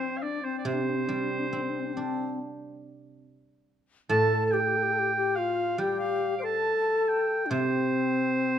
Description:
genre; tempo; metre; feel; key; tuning
chinese traditional; 70 BPM; 4/4; rubato; C zhi mode; A4 = 440 Hz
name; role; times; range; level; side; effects
clear oboe; melody; 0.0-8.6 s; C5 to D6; -29 LUFS; right 3 dB; none
breathy bright low xiao; second line; 0.0-8.6 s; C4 to C5; -28 LUFS; left 4 dB; none
guzheng; accompaniment; 0.0-8.6 s; A2 to D4; -31 LUFS; right 3 dB; none
room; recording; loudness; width
moderate recital hall reverb, RT60 1.3 s; dark, warm production; -25 LUFS; side -9 dB against mid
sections
0.0-8.6 A section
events
none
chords
none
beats
| 0.66 1.53 2.39 3.25 | 4.11 4.96 5.82 6.68 | 7.55 8.42

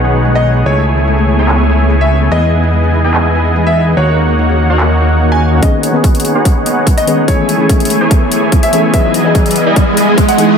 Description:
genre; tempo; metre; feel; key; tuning
future bass; 145 BPM; 4/4; half-time; unclear; A4 = 439 Hz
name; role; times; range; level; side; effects
shimmering ambient pad; sustained chords; 0.0-10.6 s; C#3 to D#5; -21 LUFS; right 1 dB; chorus, built-in reverb, sidechain pumping
Celtic harp; arpeggios; 0.0-8.4 s; G#3 to C#5; -21 LUFS; left 9 dB; sidechain pumping, digital delay
supersaw chords; riff; 0.0-10.6 s; A3 to G#5; -14 LUFS; right 1 dB; sidechain pumping, low-pass filter, digital delay
fat analog bass; bass; 0.0-10.6 s; B1 to E2; -14 LUFS; equal; sidechain pumping, high-pass filter
trap drum kit; drums; 0.0-10.5 s; handclaps, hi-hat; -20 LUFS; left 1 dB; overdrive, high-pass filter on hats, low-pass filter on hats, high-pass filter on snare, low-pass filter on snare
bright grand piano; melody; 0.4-10.4 s; C#5 to G#5; -18 LUFS; equal; sidechain pumping, low-pass filter, digital delay
soft round pluck; accompaniment; 5.6-10.6 s; D#3 to D#5; -17 LUFS; left 4 dB; chorus, sidechain pumping, digital delay
electronic kick drum; drums; 5.6-10.3 s; none; -11 LUFS; equal; overdrive
riser; sound effects; 7.8-10.6 s; none; -16 LUFS; right 2 dB; none
room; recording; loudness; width
light reverb, digital ambience; none; -9 LUFS; side -6 dB against mid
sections
0.0-5.6 A section; 5.6-10.6 B section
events
build-up 5.6-10.6; filter sweep on supersaw synth 5.6-10.6; filter sweep on grand piano 5.6-10.6; filter sweep on ambient pad 5.6-10.6; riser 7.8-10.6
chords
0.0 B69; 0.7 Amaj7/C#; 2.3 Emaj7; 4.0 D#m7; 5.6 B69; 7.3 Amaj7/C#; 8.9 Emaj7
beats
0.25 | 0.66 1.07 1.49 1.90 | 2.32 2.73 3.14 3.56 | 3.97 4.38 4.80 5.21 | 5.63 6.04 6.45 6.87 | 7.28 7.70 8.11 8.52 | 8.94 9.35 9.76 10.18

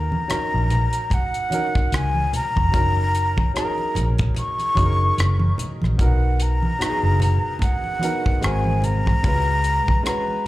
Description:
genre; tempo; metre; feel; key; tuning
lush 1970s-style soul; 74 BPM; 4/4; swing 58% on 16ths; unclear; A4 = 438 Hz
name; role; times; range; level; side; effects
breathy jazz flute; melody; 0.0-10.5 s; Gb5 to Db6; -24 LUFS; left 1 dB; slapback echo
warm grand piano; accompaniment; 0.0-10.5 s; Gb3 to Cb5; -28 LUFS; equal; slapback echo
vintage muted fingered electric bass; bass; 0.0-9.9 s; F1 to Eb2; -20 LUFS; equal; none
congas; percussion; 0.1-10.4 s; none; -30 LUFS; right 2 dB; none
tight funk drum kit; drums; 0.3-10.3 s; hi-hat, kick drum, rim click; -23 LUFS; equal; none
room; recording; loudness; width
studio ambience; live gig heard through the venue's PA, club reverb; -18 LUFS; side -16 dB against mid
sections
0.0-10.5 A section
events
none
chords
0.0 Ebm7; 2.7 Gb6; 6.0 Bmaj7; 8.4 Ab9; 9.2 Db7sus4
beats
0.29 1.11 1.92 | 2.73 3.55 4.36 5.17 | 5.99 6.80 7.62 8.43 | 9.24 10.06

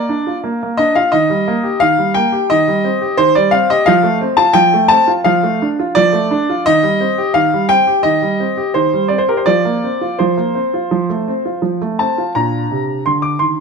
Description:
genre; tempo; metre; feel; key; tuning
classical-period piano sonatina; 86 BPM; 4/4; straight; Bb major; A4 = 440 Hz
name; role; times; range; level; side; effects
clear baby grand piano; solo; 0.0-13.6 s; Bb2 to D6; -12 LUFS; equal; none
room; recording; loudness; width
moderate recital hall reverb, RT60 1.6 s; close, detailed microphones; -12 LUFS; side -5 dB against mid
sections
0.0-12.4 A section; 12.4-13.6 B section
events
none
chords
0.0 Bb; 1.1 Eb; 2.5 Cm/Eb; 3.9 F; 5.3 Dm/F; 6.7 Cm/Eb; 9.5 Fsus4; 10.9 F; 12.4 Bb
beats
0.44 | 1.13 1.81 2.50 3.18 | 3.87 4.57 5.26 5.96 | 6.66 7.35 8.04 8.74 | 9.46 10.19 10.92 11.65 | 12.37 13.07

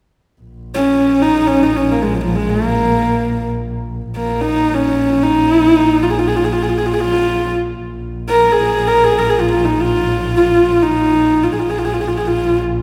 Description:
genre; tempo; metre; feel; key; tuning
mongolian traditional, Mongolian folk; free time; none; none; Bb yu mode; A4 = 440 Hz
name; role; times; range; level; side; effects
rich double bass; drone; 0.4-12.8 s; Bb1; -24 LUFS; equal; none
warm horsehead fiddle; melody; 0.7-12.6 s; F3 to Bb4; -16 LUFS; equal; none
room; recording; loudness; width
wet scoring stage reverb, RT60 2.0 s; recorded in a church or concert hall; -15 LUFS; mono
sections
0.4-12.8 A section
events
none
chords
none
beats
free time

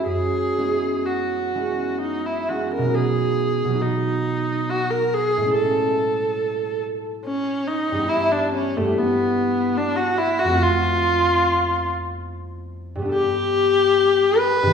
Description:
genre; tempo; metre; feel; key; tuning
classical, impressionist duo for viola and harp; 71 BPM; 3/4; rubato; unclear; A4 = 439 Hz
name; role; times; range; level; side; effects
warm viola; melody; 0.0-14.7 s; A3 to B4; -20 LUFS; left 1 dB; none
concert harp; accompaniment; 0.0-14.7 s; F2 to A4; -24 LUFS; right 1 dB; none
room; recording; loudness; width
wet recital hall reverb, RT60 1.6 s; heard from further back in the room; -19 LUFS; side -6 dB against mid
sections
0.0-2.9 A section; 2.9-14.7 B section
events
none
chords
0.1 F#9sus4; 2.9 B6; 5.5 Amaj7; 8.1 G6; 13.1 Gadd9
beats
| 0.05 1.04 2.00 | 2.94 3.81 4.68 | 5.54 6.40 7.24 | 8.09 8.94 9.77 | 10.61 11.46 12.29 | 13.12 13.96

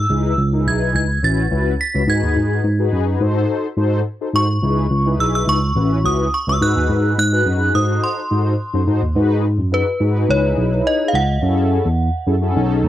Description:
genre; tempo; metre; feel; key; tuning
early-eighties boogie funk; 106 BPM; 4/4; straight; unclear; A4 = 439 Hz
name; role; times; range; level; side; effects
metallic FM bell; melody; 0.0-12.8 s; B4 to B6; -21 LUFS; right 1 dB; chorus
tine electric piano; bass; 0.0-12.9 s; A1 to G#2; -17 LUFS; equal; medium stereo tremolo
mellow synth brass; accompaniment; 0.1-12.9 s; C#4 to B#4; -22 LUFS; left 4 dB; chorus
room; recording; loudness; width
little or no reverb; dry, close 1970s-style studio recording; -15 LUFS; side -12 dB against mid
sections
0.0-9.2 A section; 9.2-12.9 B section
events
none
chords
0.1 C#m7; 1.2 A69; 2.1 G#m7; 3.2 G#7b9; 4.6 C#m7; 5.8 A69; 6.6 G#m7; 7.7 G#7b9; 9.2 G#m7; 10.3 C#m9; 11.4 F#m9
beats
| 0.10 0.67 1.23 1.80 | 2.36 2.93 3.50 4.06 | 4.63 5.19 5.76 6.33 | 6.89 7.46 8.02 8.59 | 9.15 9.72 10.29 10.85 | 11.42 11.98 12.55

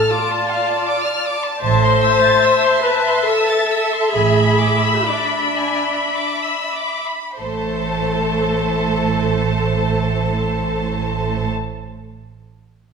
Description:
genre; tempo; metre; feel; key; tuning
classical, slow romantic movement for string orchestra; 45-79 BPM; 3/4; rubato; A minor; A4 = 440 Hz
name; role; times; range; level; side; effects
rich studio violin section; melody; 0.0-11.5 s; A5 to B5; -23 LUFS; left 4 dB; none
rich chamber violin section; second line; 0.0-11.5 s; A4 to A6; -22 LUFS; right 1 dB; none
rich chamber viola section; accompaniment; 0.0-11.5 s; A3 to C5; -19 LUFS; left 2 dB; none
clear chamber double bass section; bass; 1.6-11.5 s; A1; -23 LUFS; right 6 dB; none
rich chamber cello section; bass; 1.6-11.5 s; A2; -23 LUFS; right 5 dB; none
room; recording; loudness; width
wet recital hall reverb, RT60 1.6 s; minimal, uncompressed stereo recording; -15 LUFS; side -5 dB against mid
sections
0.0-7.4 A section; 7.4-11.1 B section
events
slowing down 0.5-7.4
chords
0.0 Dm; 1.6 Am; 4.1 E7/A; 7.4 Am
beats
0.11 0.87 | 1.63 2.43 3.27 | 4.14 5.08 6.14 | 7.41 8.65 9.86

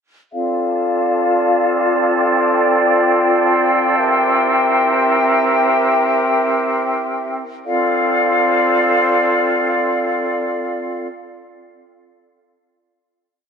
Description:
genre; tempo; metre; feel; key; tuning
hip hop, atmospheric cloud-rap; free time; none; none; F major; A4 = 440 Hz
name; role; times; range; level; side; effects
mellow small flute group; sustained chords; 0.3-11.1 s; C4 to G5; -14 LUFS; equal; low-pass filter
wind-like tuned noise texture; texture; 0.7-5.8 s; E4 to Bb5; -22 LUFS; equal; built-in reverb
room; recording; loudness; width
wet lush hall reverb, RT60 2.8 s; none; -14 LUFS; side -7 dB against mid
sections
0.3-7.7 breakdown; 7.7-11.3 final chord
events
filter sweep on flute section 0.3-7.7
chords
0.3 F6; 4.0 C7; 7.7 F6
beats
free time

